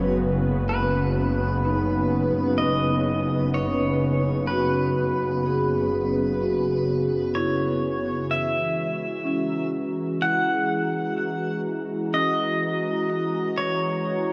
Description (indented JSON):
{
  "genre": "ambient",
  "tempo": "63 BPM",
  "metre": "4/4",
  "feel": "straight",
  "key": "F# mixolydian",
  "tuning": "A4 = 440 Hz",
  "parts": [
    { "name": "pedal steel guitar", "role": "melody", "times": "0.0-14.3 s", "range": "B4 to F#5", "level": "-30 LUFS", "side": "equal", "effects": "delay" },
    { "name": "warm analog pad", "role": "sustained chords", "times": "0.0-14.3 s", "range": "C#3 to A#5", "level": "-29 LUFS", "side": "equal", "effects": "subtle chorus" },
    { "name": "vibraphone with medium mallets", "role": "arpeggios", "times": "0.0-14.3 s", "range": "G#3 to G#4", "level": "-30 LUFS", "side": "equal", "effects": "delay" },
    { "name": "clear symphonic double bass section", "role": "bass", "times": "0.0-8.3 s", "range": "F#1", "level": "-31 LUFS", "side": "equal", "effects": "none" }
  ],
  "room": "wet cathedral reverb, RT60 5.2 s",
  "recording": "in a vast, echoing space",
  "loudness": "-24 LUFS",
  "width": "mono",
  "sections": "0.0-8.3 A section; 8.3-14.3 A section",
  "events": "none",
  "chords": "0.0 Bsus2/F#; 8.3 F#9"
}